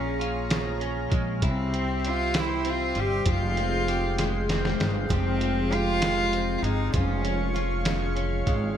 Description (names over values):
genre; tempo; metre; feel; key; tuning
six-eight pop ballad; 65 BPM (dotted quarters); 6/8; straight; F minor; A4 = 441 Hz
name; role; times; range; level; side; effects
rich cello; melody; 0.0-7.9 s; C4 to G4; -28 LUFS; equal; none
direct-recorded clean electric guitar; accompaniment; 0.0-8.8 s; Bb2 to G4; -31 LUFS; equal; double-tracked left and right
lush unison pad; sustained chords; 0.0-8.8 s; Ab3 to Db6; -32 LUFS; left 1 dB; chorus
upright bass; bass; 0.0-8.8 s; F1 to C2; -29 LUFS; equal; none
lo-fi sampler-style drum kit; drums; 0.2-8.6 s; hi-hat, kick drum, snare drum; -29 LUFS; equal; none
picked steel-string acoustic guitar; arpeggios; 5.1-8.8 s; F2 to G4; -35 LUFS; right 5 dB; none
room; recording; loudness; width
light reverb, small room ambience; none; -23 LUFS; side -9 dB against mid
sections
0.0-8.8 A section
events
drum fill 4.2-5.1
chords
0.0 Bbm7; 1.4 C; 3.3 Fmadd9; 6.9 Db/F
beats
0.50 | 1.42 2.34 | 3.26 4.18 | 5.10 6.02 | 6.94 7.86